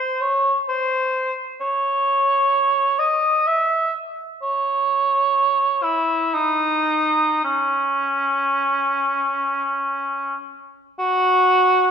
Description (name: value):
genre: classical, free, expressive piece for unaccompanied cor anglais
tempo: 43-67 BPM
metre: 3/4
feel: rubato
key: C# minor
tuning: A4 = 437 Hz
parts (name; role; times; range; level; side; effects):
- mellow cor anglais; solo; 0.0-11.9 s; C#4 to E5; -18 LUFS; right 1 dB; none
room: wet concert hall reverb, RT60 1.8 s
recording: minimal, uncompressed stereo recording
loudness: -18 LUFS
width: side -7 dB against mid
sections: 0.0-11.0 A section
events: none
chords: none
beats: 0.67 | 1.60 2.52 3.45 | 4.41 5.35 6.34 | 7.45 8.62 9.77 | 10.98